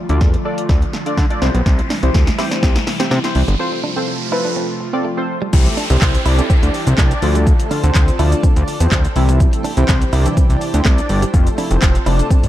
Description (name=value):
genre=dance-pop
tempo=124 BPM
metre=4/4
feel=straight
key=C major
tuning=A4 = 439 Hz
part: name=airy breathy pad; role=sustained chords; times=0.0-12.5 s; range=C3 to A5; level=-27 LUFS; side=right 1 dB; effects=chorus, sidechain pumping
part: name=riser and downlifter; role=sound effects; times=0.0-9.4 s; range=none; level=-28 LUFS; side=equal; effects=none
part: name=warm analog keys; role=accompaniment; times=0.1-12.5 s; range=C3 to D5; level=-23 LUFS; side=equal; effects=chorus, sidechain pumping
part: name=fat analog bass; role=bass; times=0.1-12.5 s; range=F1 to D3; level=-15 LUFS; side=equal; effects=sidechain pumping
part: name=deep house drum kit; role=drums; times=0.1-12.5 s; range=crash cymbal, handclaps, hi-hat, kick drum, shaker, snare drum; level=-16 LUFS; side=equal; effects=none
part: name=direct-recorded clean electric guitar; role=riff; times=1.8-12.4 s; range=G3 to E4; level=-26 LUFS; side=right 4 dB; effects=wide subtle chorus
part: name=filtered supersaw swell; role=melody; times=5.7-12.5 s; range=A3 to D5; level=-25 LUFS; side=equal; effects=sidechain pumping, dub echo
room=digital ambience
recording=dark, warm production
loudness=-13 LUFS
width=side -13 dB against mid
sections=0.0-5.5 A section; 5.5-12.5 B section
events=build-up 0.0-5.5; drum fill 0.0-3.6; riser 0.0-5.5; break 3.6-5.5; drop 5.5-12.5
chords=0.0 Dm; 1.4 C; 3.6 F; 5.5 C; 7.2 Dm; 9.2 C; 11.3 F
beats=0.21 0.69 1.18 | 1.66 2.14 2.63 3.11 | 3.60 4.08 4.56 5.05 | 5.53 6.01 6.50 6.98 | 7.47 7.95 8.43 8.92 | 9.40 9.89 10.37 10.85 | 11.34 11.82 12.30